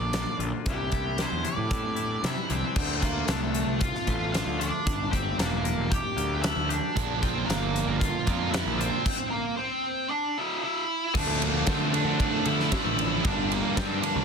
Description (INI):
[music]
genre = quiet-loud alternative rock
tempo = 115 BPM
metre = 4/4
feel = straight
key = unclear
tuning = A4 = 440 Hz
[part]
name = octave-fuzz lead guitar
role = melody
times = 0.0-14.2 s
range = A3 to G5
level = -30 LUFS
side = right 1 dB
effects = distortion
[part]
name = twangy electric guitar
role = arpeggios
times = 0.0-9.1 s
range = G2 to G4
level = -36 LUFS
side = left 9 dB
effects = harmonic tremolo, analog delay
[part]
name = fuzz picked electric bass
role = bass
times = 0.0-14.2 s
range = E1 to D3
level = -31 LUFS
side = equal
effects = overdrive
[part]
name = big rock drum kit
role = drums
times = 0.1-14.2 s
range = crash cymbal, hi-hat, kick drum, ride cymbal, snare drum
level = -29 LUFS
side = equal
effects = none
[part]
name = cranked stack guitar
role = riff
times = 7.0-14.2 s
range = G2 to D4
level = -30 LUFS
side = right 15 dB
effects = overdrive
[part]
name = crunchy overdriven guitar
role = riff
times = 11.1-14.2 s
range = G2 to D4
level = -31 LUFS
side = left 14 dB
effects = none
[sound]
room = small room reverb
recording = dense, heavily limited modern master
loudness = -24 LUFS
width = side -6 dB against mid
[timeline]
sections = 0.0-2.8 A section; 2.8-11.1 B section; 11.1-14.2 C section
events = stop 9.1-11.1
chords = 0.0 Bb; 0.7 Cadd9; 2.8 Dm; 4.9 Gm; 7.0 Bb; 9.1 Cadd9; 11.1 Dm; 13.2 Gm